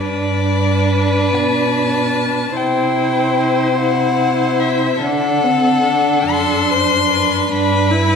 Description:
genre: classical, slow romantic movement for string quartet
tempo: 44-51 BPM (dotted quarters)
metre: 6/8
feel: rubato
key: G major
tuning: A4 = 436 Hz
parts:
  - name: rich violin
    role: melody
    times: 0.0-8.2 s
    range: D5 to C6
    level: -19 LUFS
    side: left 6 dB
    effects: none
  - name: rich violin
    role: second line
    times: 0.0-8.2 s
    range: A4 to C5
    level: -20 LUFS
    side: left 4 dB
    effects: none
  - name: rich viola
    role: accompaniment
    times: 0.0-8.2 s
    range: C4 to E4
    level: -19 LUFS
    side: right 2 dB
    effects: none
  - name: warm cello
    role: bass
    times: 0.0-8.2 s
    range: F#2 to D3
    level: -21 LUFS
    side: right 2 dB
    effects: none
room: wet recital hall reverb, RT60 1.3 s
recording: recorded in a church or concert hall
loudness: -13 LUFS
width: side -6 dB against mid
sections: 0.0-8.2 A section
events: none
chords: 0.0 G; 2.6 C; 5.0 D7; 7.5 G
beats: 1.31 | 2.56 3.79 | 5.02 6.31 | 7.51

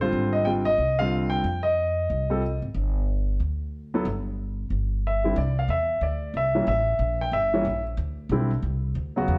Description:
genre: jazz piano trio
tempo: 183 BPM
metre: 4/4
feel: swing 62% on 8ths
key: C major from 5.4 s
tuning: A4 = 442 Hz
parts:
  - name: warm concert grand piano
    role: melody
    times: 0.0-9.4 s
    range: Db3 to G5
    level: -26 LUFS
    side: equal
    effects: plate reverb
  - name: upright bass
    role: bass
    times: 0.0-9.4 s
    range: G1 to F2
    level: -29 LUFS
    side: equal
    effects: none
room: wet studio reverb, RT60 1.0 s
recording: heard from further back in the room, nothing above 10.4 kHz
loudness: -25 LUFS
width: mono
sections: 0.0-5.4 A section; 5.4-9.4 B section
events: none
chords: 0.1 Abmaj7; 1.4 F7sus2; 2.7 G5; 5.4 Cadd9; 6.7 A7(no3); 8.0 D7(no3)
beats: | 0.13 0.46 0.78 1.11 | 1.44 1.77 2.09 2.42 | 2.75 3.08 3.40 3.73 | 4.06 4.38 4.71 5.04 | 5.37 5.69 6.02 6.35 | 6.67 7.00 7.33 7.66 | 7.98 8.31 8.64 8.96 | 9.29

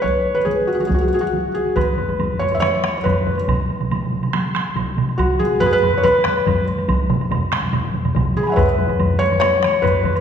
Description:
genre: japanese traditional, taiko drum ensemble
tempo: 141 BPM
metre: 4/4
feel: straight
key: unclear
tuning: A4 = 439 Hz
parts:
  - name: felt-muted upright piano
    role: melody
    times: 0.0-10.1 s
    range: F#4 to B5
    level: -18 LUFS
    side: equal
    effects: none
  - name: taiko ensemble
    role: percussion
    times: 0.0-10.2 s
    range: none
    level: -24 LUFS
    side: equal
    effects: none
  - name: taiko ensemble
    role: percussion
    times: 0.0-9.9 s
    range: none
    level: -26 LUFS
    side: equal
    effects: none
  - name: taiko ensemble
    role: percussion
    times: 1.8-10.1 s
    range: none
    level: -23 LUFS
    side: left 3 dB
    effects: none
  - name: woodblock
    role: percussion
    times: 1.8-10.2 s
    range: none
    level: -30 LUFS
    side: right 3 dB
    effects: none
  - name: taiko ensemble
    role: percussion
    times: 3.5-8.3 s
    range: none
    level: -23 LUFS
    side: right 3 dB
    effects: none
room: wet recital hall reverb, RT60 1.9 s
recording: recorded in a church or concert hall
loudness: -16 LUFS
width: side -8 dB against mid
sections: 0.0-1.8 A section; 1.8-10.2 B section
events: speeding up 0.0-10.2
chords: none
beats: | 0.04 0.47 0.91 1.34 | 1.77 2.20 2.62 3.05 | 3.48 3.91 4.34 4.76 | 5.19 5.61 6.04 6.46 | 6.89 7.31 7.73 8.15 | 8.57 9.00 9.42 9.84

